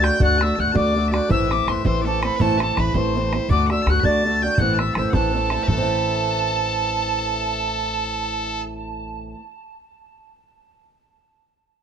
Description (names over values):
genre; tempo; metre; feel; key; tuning
celtic folk, Celtic jig; 110 BPM (dotted quarters); 6/8; straight; A dorian; A4 = 440 Hz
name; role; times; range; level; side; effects
tin whistle; melody; 0.0-8.6 s; A5 to A6; -23 LUFS; right 1 dB; tape echo
loud bright bagpipes; second line; 0.0-8.6 s; A4 to B5; -30 LUFS; left 5 dB; none
fingerpicked acoustic archtop guitar; accompaniment; 0.0-9.4 s; A2 to F#4; -24 LUFS; right 2 dB; none
upright bass; bass; 0.0-9.3 s; A1 to D2; -24 LUFS; left 1 dB; none
bodhran; percussion; 0.0-5.9 s; none; -24 LUFS; right 2 dB; none
room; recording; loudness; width
light reverb; close, detailed microphones; -18 LUFS; side -8 dB against mid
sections
0.0-5.7 A section; 5.7-7.9 B section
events
none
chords
0.0 D; 1.3 Am; 3.5 D; 4.6 Am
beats
| 0.21 0.76 | 1.30 1.85 | 2.40 2.95 | 3.50 4.04 | 4.59 5.13 | 5.68 6.23 | 6.77 7.32